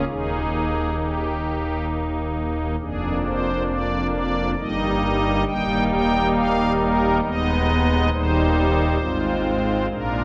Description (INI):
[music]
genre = classical, chorale-style piece for pipe organ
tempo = 67 BPM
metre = 3/4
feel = straight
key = Eb major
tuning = A4 = 441 Hz
[part]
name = pipe organ, strings celeste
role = solo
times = 0.0-10.2 s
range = Eb1 to G5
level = -22 LUFS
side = equal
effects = none
[sound]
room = wet church reverb, RT60 2.9 s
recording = none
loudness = -22 LUFS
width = mono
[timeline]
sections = 0.0-10.2 A section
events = none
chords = 0.1 Eb; 2.8 Bb/F; 4.6 Eb/G; 5.5 Eb; 7.2 Abm/Eb; 8.1 Eb; 9.0 Fm/Ab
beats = | 0.07 0.98 1.89 | 2.80 3.69 4.59 | 5.47 6.35 7.25 | 8.13 9.00 9.90